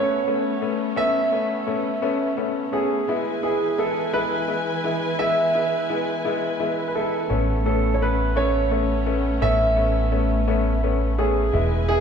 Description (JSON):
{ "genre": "pop", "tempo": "57 BPM (dotted quarters)", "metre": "6/8", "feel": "straight", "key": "A major", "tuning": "A4 = 439 Hz", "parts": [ { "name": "clear concert grand piano", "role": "melody", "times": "0.0-12.0 s", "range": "G#4 to E5", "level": "-24 LUFS", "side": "right 3 dB", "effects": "none" }, { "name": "clear upright piano", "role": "accompaniment", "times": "0.0-12.0 s", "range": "G#3 to E4", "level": "-25 LUFS", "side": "left 4 dB", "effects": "none" }, { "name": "warm studio string section", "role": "sustained chords", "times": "0.0-12.0 s", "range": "E3 to G#5", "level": "-30 LUFS", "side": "left 1 dB", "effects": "none" }, { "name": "fingered electric bass", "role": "bass", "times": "7.3-12.0 s", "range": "E1 to A1", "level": "-22 LUFS", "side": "equal", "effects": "none" } ], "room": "wet recital hall reverb, RT60 1.6 s", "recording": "recorded in a church or concert hall", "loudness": "-20 LUFS", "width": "side -7 dB against mid", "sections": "0.0-12.0 A section", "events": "none", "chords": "0.0 Aadd9; 3.1 E; 7.3 Aadd9", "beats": "| 0.97 2.03 | 3.08 4.14 | 5.20 6.25 | 7.31 8.36 | 9.42 10.47 | 11.53" }